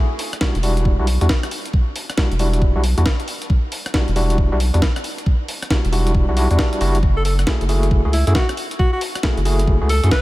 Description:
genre	UK garage, two-step garage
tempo	136 BPM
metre	4/4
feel	swing 64% on 16ths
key	E dorian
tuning	A4 = 442 Hz
part	breakbeat sampler-style drum kit	drums	0.2-10.2 s	hi-hat, rim click, snare drum	-25 LUFS	equal	none
part	overdriven tine electric piano	stabs	0.4-10.1 s	G3 to G#4	-24 LUFS	equal	fast tremolo, ping-pong delay
part	electronic kick drum	drums	0.4-10.2 s	none	-18 LUFS	equal	none
part	saturated sub bass	bass	0.6-10.1 s	E1 to F#2	-17 LUFS	equal	none
part	clear alto saxophone	melody	7.2-10.2 s	E4 to B4	-24 LUFS	equal	ping-pong delay
room	digital ambience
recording	none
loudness	-16 LUFS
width	side -18 dB against mid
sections	0.0-10.2 A section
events	none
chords	0.0 Em9; 7.0 F#m9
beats	0.41 0.85 1.29 | 1.73 2.17 2.62 3.06 | 3.50 3.94 4.38 4.82 | 5.26 5.70 6.15 6.59 | 7.03 7.47 7.91 8.35 | 8.79 9.23 9.68 10.12

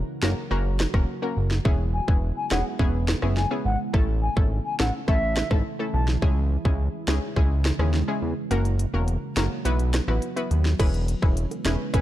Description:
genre	dancehall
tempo	105 BPM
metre	4/4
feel	straight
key	E major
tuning	A4 = 439 Hz
part	analog pluck	accompaniment	0.0-12.0 s	G#3 to B4	-30 LUFS	left 1 dB	chorus
part	deep dark ambient pad	sustained chords	0.0-12.0 s	C#3 to F#4	-34 LUFS	right 2 dB	chorus, built-in reverb
part	fat analog bass	bass	0.0-12.0 s	E1 to E2	-24 LUFS	equal	none
part	island pop drum kit	drums	0.2-12.0 s	crash cymbal, hi-hat, kick drum, rim click, snare drum	-24 LUFS	equal	overdrive
part	baroque flute	melody	1.9-6.1 s	E5 to A5	-30 LUFS	left 1 dB	ping-pong delay
part	bongos	percussion	10.8-12.0 s	none	-32 LUFS	right 8 dB	none
room	little or no reverb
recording	dark, warm production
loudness	-22 LUFS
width	side -14 dB against mid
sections	0.0-10.8 A section; 10.8-12.0 B section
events	kick muted 8.5-10.8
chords	0.0 F#; 1.7 E6; 3.9 A; 6.2 C#m; 8.5 F#; 9.7 Bsus4; 10.8 E6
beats	0.51 1.08 | 1.65 2.22 2.79 3.37 | 3.94 4.51 5.08 5.65 | 6.22 6.79 7.37 7.94 | 8.51 9.08 9.65 10.22 | 10.79 11.37 11.94

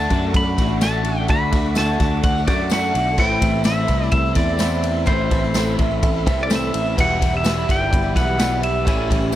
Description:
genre	folk rock and heartland rock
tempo	127 BPM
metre	4/4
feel	straight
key	E minor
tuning	A4 = 440 Hz
part	pedal steel guitar	melody	0.0-9.4 s	C5 to B5	-23 LUFS	equal	none
part	bright upright piano	accompaniment	0.0-9.4 s	E4 to A5	-33 LUFS	right 7 dB	none
part	picked plugged-in swing-style acoustic guitar	accompaniment	0.0-9.4 s	E2 to F#4	-29 LUFS	left 6 dB	none
part	bright tonewheel organ	sustained chords	0.0-9.4 s	G4 to D6	-35 LUFS	equal	slow rotary speaker, chorus vibrato
part	electric guitar through a small old amp	riff	0.0-9.4 s	E2 to F#4	-24 LUFS	right 1 dB	ensemble chorus
part	picked electric bass	bass	0.0-9.4 s	E1 to F#2	-22 LUFS	equal	none
part	vintage drum kit	drums	0.1-9.2 s	crash cymbal, kick drum, ride cymbal, snare drum	-21 LUFS	equal	none
part	tambourine	percussion	0.8-9.4 s	none	-35 LUFS	left 14 dB	none
room	studio reverb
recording	dry, close 1970s-style studio recording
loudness	-16 LUFS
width	side -13 dB against mid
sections	0.0-9.4 A section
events	none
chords	0.0 D; 3.2 Am; 7.0 Em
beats	0.34 0.81 | 1.28 1.76 2.23 2.71 | 3.18 3.65 4.13 4.60 | 5.08 5.55 6.02 6.50 | 6.97 7.45 7.92 8.39 | 8.87 9.34

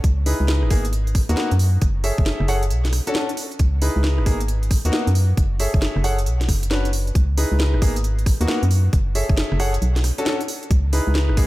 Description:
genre	UK garage, two-step garage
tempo	135 BPM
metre	4/4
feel	swing 65% on 16ths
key	C# minor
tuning	A4 = 439 Hz
part	organ-like FM bass	bass	0.0-11.5 s	F#1 to F#2	-19 LUFS	equal	none
part	electronic kick drum	drums	0.0-11.5 s	none	-19 LUFS	equal	none
part	garage drum kit	drums	0.0-11.5 s	hi-hat, rim click, snare drum	-27 LUFS	equal	none
part	warm grand piano	stabs	0.3-11.5 s	A#3 to F#5	-26 LUFS	left 1 dB	diffuse ambient delay
room	digital ambience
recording	none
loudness	-17 LUFS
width	side -18 dB against mid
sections	0.0-11.5 A section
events	none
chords	0.0 C#m7; 0.7 G#m7; 1.6 F#m7; 2.7 Bm7; 3.6 C#m7; 4.3 G#m7; 5.2 F#m7; 6.3 Bm; 7.2 C#m7; 7.8 G#m7; 8.7 F#m7; 9.8 Bm7; 10.7 C#m7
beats	| 0.04 0.48 0.93 1.37 | 1.82 2.26 2.71 3.15 | 3.60 4.04 4.49 4.93 | 5.37 5.82 6.26 6.71 | 7.15 7.60 8.04 8.48 | 8.93 9.37 9.82 10.26 | 10.71 11.15

